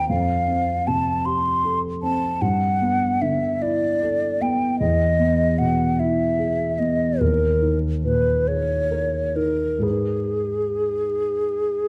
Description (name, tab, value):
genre	classical, impressionist duo for flute and grand piano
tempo	41-52 BPM (dotted quarters)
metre	12/8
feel	rubato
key	unclear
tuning	A4 = 440 Hz
part	mellow hollow concert flute	melody	0.0-11.9 s	G#4 to C6	-24 LUFS	equal	none
part	dark concert grand piano	accompaniment	0.0-11.9 s	D#2 to B4	-25 LUFS	equal	none
room	moderate recital hall reverb, RT60 1.6 s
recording	close, detailed microphones, vinyl crackle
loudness	-22 LUFS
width	mono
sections	0.0-11.9 A section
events	none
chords	0.1 Fadd9; 2.4 G69; 4.8 Emaj7; 7.2 D#7sus4; 9.8 G#madd9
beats	| 0.10 1.26 2.42 3.62 | 4.80 5.99 7.21 8.47 | 9.83 11.26